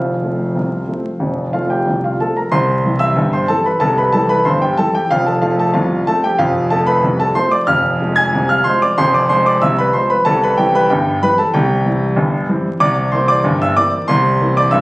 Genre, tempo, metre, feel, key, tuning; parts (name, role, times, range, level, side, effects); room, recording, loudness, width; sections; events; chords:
ragtime piano; 93 BPM; 2/4; straight; C major; A4 = 440 Hz
warm grand piano; solo; 0.0-14.8 s; F1 to Ab6; -13 LUFS; equal
light reverb; recorded on a phone in the room, club reverb, vinyl crackle; -13 LUFS; side -21 dB against mid
0.0-2.5 A section; 2.5-14.8 B section
0.0 F; 2.5 C; 5.1 F; 7.7 Fm; 10.2 C; 12.8 C7